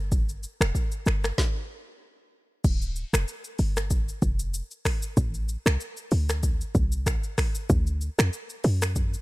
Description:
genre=afrobeats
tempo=95 BPM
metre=4/4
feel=swing 55% on 16ths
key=D minor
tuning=A4 = 440 Hz
part: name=short 808-style bass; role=bass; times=0.0-9.2 s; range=D1 to F#2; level=-25 LUFS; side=equal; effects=none
part: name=afro-pop drum kit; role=drums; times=0.1-9.2 s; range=crash cymbal, finger snaps, hi-hat, kick drum, rim click, shaker, snare drum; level=-26 LUFS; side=equal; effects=none
room=little or no reverb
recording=none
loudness=-24 LUFS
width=side -20 dB against mid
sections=0.0-2.6 A section; 2.6-9.2 B section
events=stop 1.4-2.6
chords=none

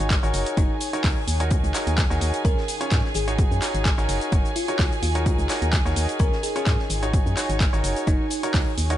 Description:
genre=piano house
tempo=128 BPM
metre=4/4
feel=swing 54% on 16ths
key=unclear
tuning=A4 = 440 Hz
part: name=warm chamber violin section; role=sustained chords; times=0.0-9.0 s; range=Ab4 to Ab5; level=-32 LUFS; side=equal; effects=sidechain pumping
part: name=bright concert grand piano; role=riff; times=0.0-9.0 s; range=Db4 to Db5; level=-29 LUFS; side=right 1 dB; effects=sidechain pumping, ping-pong delay
part: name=organ-like FM bass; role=bass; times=0.0-9.0 s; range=Gb1 to Ab2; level=-25 LUFS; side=equal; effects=sidechain pumping
part: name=punchy analog drum machine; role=drums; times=0.0-9.0 s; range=cabasa, handclaps, hi-hat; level=-29 LUFS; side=equal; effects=none
part: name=granular cloud pad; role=texture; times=0.0-9.0 s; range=Eb4 to Ab5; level=-35 LUFS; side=equal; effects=built-in reverb, sidechain pumping
part: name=big rock drum kit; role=drums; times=0.1-8.9 s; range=hi-hat, snare drum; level=-39 LUFS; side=left 2 dB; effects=none
part: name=electronic kick drum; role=drums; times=0.1-8.6 s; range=none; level=-22 LUFS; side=equal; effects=none
part: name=thumb-piano-like synth pluck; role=melody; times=0.6-8.4 s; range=Eb4 to Bb4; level=-32 LUFS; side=equal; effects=chorus, ping-pong delay
room=small room ambience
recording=nothing above 10.7 kHz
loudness=-20 LUFS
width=side -12 dB against mid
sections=0.0-9.0 A section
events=none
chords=0.3 Gb6; 1.3 Ebm7; 2.4 Db; 3.4 Ab7sus4; 4.1 Gb6; 5.0 Ebm7; 6.2 Db; 7.1 Ab7sus4; 7.8 Gb6

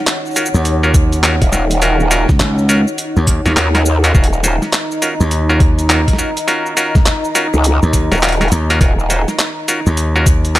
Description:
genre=glitch hop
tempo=103 BPM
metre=4/4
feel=swing 63% on 16ths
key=Eb minor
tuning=A4 = 442 Hz
part: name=dark analog pad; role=sustained chords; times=0.0-10.6 s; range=Eb4 to Bb5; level=-21 LUFS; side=equal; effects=chorus, sidechain pumping
part: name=boom bap sampler-style drum kit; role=drums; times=0.1-10.6 s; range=handclaps, hi-hat, shaker, snare drum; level=-18 LUFS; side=equal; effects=studio reverb
part: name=bright clav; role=stabs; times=0.4-10.6 s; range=Db4 to C5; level=-19 LUFS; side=equal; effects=sidechain pumping, dub echo
part: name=slap bass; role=bass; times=0.5-10.6 s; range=Db2 to Eb2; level=-14 LUFS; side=equal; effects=none
part: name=electronic kick drum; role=drums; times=0.9-10.4 s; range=none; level=-13 LUFS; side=equal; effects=studio reverb
part: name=growl bass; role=bass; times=1.4-9.3 s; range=Eb1 to Eb2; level=-14 LUFS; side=equal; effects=chorus, overdrive
room=digital ambience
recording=none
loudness=-11 LUFS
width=side -16 dB against mid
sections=0.0-10.6 A section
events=none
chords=0.0 Ebm7

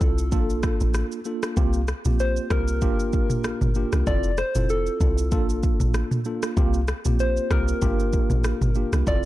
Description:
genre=afrobeats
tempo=96 BPM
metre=4/4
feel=swing 55% on 16ths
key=C mixolydian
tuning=A4 = 441 Hz
part: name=soft struck synth lead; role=melody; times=0.0-9.3 s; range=A4 to D5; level=-29 LUFS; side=left 1 dB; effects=chorus, tape echo
part: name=mellow tine electric piano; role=accompaniment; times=0.0-9.3 s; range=Bb3 to A4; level=-28 LUFS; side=right 2 dB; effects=medium stereo tremolo
part: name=deep log drum bass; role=bass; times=0.0-9.3 s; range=F1 to C2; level=-24 LUFS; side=equal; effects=none
part: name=afro-pop drum kit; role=drums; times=0.0-9.2 s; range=kick drum, rim click, shaker, toms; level=-25 LUFS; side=equal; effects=vintage 12-bit sampler grit
room=digital ambience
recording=dark, warm production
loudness=-20 LUFS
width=side -15 dB against mid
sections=0.0-9.3 A section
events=none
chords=0.3 Bbmaj7; 1.6 C7sus4; 2.8 Gm7; 4.1 Fmaj7; 5.3 Bbmaj7; 6.6 C7sus4; 7.8 Gm7

